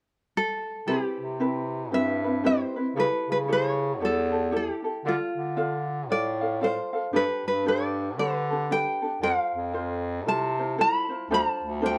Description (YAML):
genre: Hawaiian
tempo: 115 BPM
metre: 4/4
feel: swing 62% on 8ths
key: C major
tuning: A4 = 440 Hz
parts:
  - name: tenor ukulele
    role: melody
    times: 0.4-12.0 s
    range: F4 to B5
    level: -30 LUFS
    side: equal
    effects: plate reverb
  - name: ukulele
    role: accompaniment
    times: 0.9-12.0 s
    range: C4 to F5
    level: -31 LUFS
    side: equal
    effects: none
  - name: bright bass clarinet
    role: bass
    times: 0.9-12.0 s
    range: D2 to D3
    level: -32 LUFS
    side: equal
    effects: none
room: moderate studio reverb, RT60 0.6 s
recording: dark, warm production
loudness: -27 LUFS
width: mono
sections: 0.9-12.0 A section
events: none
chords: 0.0 N.C.; 0.9 Cmaj7; 3.0 A7/C#; 5.1 Dm; 7.1 Gadd9; 9.2 Fmaj7; 11.3 Dm7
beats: 0.35 | 0.88 1.40 1.92 2.44 | 2.97 3.49 4.01 4.53 | 5.05 5.58 6.10 6.62 | 7.14 7.66 8.18 8.70 | 9.22 9.74 10.26 10.78 | 11.30 11.82